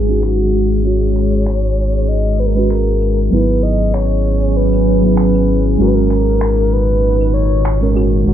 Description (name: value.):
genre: organic downtempo.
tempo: 97 BPM.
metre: 4/4.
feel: swing 56% on 16ths.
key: G# minor.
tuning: A4 = 439 Hz.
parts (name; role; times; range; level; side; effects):
breathy flute-like synth lead; melody; 0.0-8.3 s; F#4 to D#5; -20 LUFS; left 1 dB; chorus, ping-pong delay.
muted felt-like synth keys; accompaniment; 0.0-8.3 s; F#3 to A#4; -20 LUFS; right 3 dB; chorus, ping-pong delay.
bowed-like drone; sustained chords; 0.0-8.3 s; A#2 to G#4; -19 LUFS; equal; built-in reverb, vintage 12-bit sampler grit.
round analog bass; bass; 0.0-8.3 s; G#1; -16 LUFS; equal; none.
downlifter; sound effects; 0.0-3.3 s; none; -36 LUFS; right 1 dB; none.
electronic finger snaps and claves; drums; 0.2-8.1 s; none; -31 LUFS; equal; overdrive.
room: light reverb.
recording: dark, warm production, low-pass filter.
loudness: -12 LUFS.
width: side -10 dB against mid.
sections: 0.0-8.3 A section.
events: filter sweep on synth drone 0.0-8.3; filter sweep 0.0-8.3.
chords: 0.0 G#sus2; 3.3 F#9sus4/G#; 5.8 D#m7/G#.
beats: 0.23 | 0.85 1.47 2.08 2.70 | 3.32 3.94 4.56 5.18 | 5.80 6.42 7.03 7.65 | 8.27.